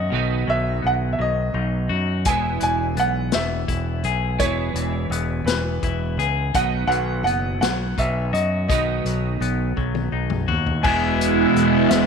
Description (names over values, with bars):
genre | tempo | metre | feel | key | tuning
indie rock | 56 BPM (dotted quarters) | 6/8 | straight | E major | A4 = 440 Hz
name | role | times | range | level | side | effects
clear upright piano | melody | 0.0-12.1 s | B4 to G#5 | -25 LUFS | equal | slapback echo
crunchy overdriven guitar | riff | 0.0-12.1 s | E2 to G#4 | -26 LUFS | left 10 dB | none
twelve-string electric guitar | riff | 0.0-12.1 s | B2 to E4 | -26 LUFS | right 13 dB | analog chorus, slapback echo
growling fingered electric bass | bass | 0.0-12.1 s | E1 to F#2 | -24 LUFS | equal | overdrive
unplugged drum kit | drums | 2.2-12.1 s | crash cymbal, hi-hat, kick drum, snare drum, toms | -26 LUFS | left 3 dB | none
room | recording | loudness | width
light reverb, small room ambience | 1960s-style stereo with parts hard left and right | -19 LUFS | side -6 dB against mid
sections
0.0-10.8 A section; 10.8-12.1 B section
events
drum fill 9.8-10.8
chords
0.0 B; 2.3 E; 6.5 B; 10.8 E